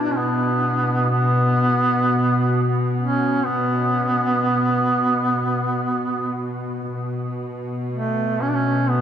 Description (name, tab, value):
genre	caucasian folk, Caucasian lament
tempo	58-65 BPM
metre	3/4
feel	rubato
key	unclear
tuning	A4 = 440 Hz
part	warm duduk	melody	0.0-9.0 s	A3 to D4	-20 LUFS	right 1 dB	none
part	warm studio string section	drone	0.0-9.0 s	B2	-23 LUFS	equal	none
room	wet cathedral reverb, RT60 6.2 s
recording	in a vast, echoing space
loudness	-18 LUFS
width	side -9 dB against mid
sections	0.0-6.9 A section; 6.9-9.0 B section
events	none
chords	none